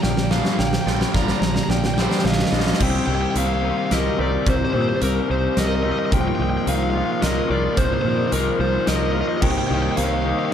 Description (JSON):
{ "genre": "post-rock", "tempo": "109 BPM", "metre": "3/4", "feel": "straight", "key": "C minor", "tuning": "A4 = 440 Hz", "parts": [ { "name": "overdriven semi-hollow guitar", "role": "melody", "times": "0.0-10.5 s", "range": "Bb4 to Bb5", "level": "-26 LUFS", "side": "right 1 dB", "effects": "tape echo" }, { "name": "chorused pulse-width pad", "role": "sustained chords", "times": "0.0-10.5 s", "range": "Eb3 to F5", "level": "-34 LUFS", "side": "right 2 dB", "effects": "none" }, { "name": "twangy electric guitar", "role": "arpeggios", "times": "0.0-10.5 s", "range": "Bb2 to Bb4", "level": "-31 LUFS", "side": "left 1 dB", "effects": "tape echo" }, { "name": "vibraphone with soft mallets", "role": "arpeggios", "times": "0.0-10.5 s", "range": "Bb4 to F5", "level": "-32 LUFS", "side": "right 4 dB", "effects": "tape echo" }, { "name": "distorted electric guitar", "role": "riff", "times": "0.0-2.8 s", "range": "G2 to G3", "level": "-27 LUFS", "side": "right 11 dB", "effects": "overdrive" }, { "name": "raw garage guitar", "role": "riff", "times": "0.0-10.5 s", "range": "G2 to Eb4", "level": "-24 LUFS", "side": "left 5 dB", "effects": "overdrive" }, { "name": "mellow fretless electric bass", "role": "bass", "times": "0.0-10.3 s", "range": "Bb1 to Bb2", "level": "-24 LUFS", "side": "equal", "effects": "ensemble chorus" }, { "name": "huge arena drum kit", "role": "drums", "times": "0.0-10.1 s", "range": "crash cymbal, hi-hat, kick drum, snare drum", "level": "-24 LUFS", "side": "right 1 dB", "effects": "none" } ], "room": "moderate recital hall reverb, RT60 1.6 s", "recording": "dark, warm production", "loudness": "-18 LUFS", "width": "side -8 dB against mid", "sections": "0.0-2.8 A section; 2.8-10.5 B section", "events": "build-up 0.0-2.8; drum fill 0.0-2.8", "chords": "0.0 Gm7/Bb; 2.8 Cm7; 6.1 Bb7sus4/C; 9.4 Eb/C" }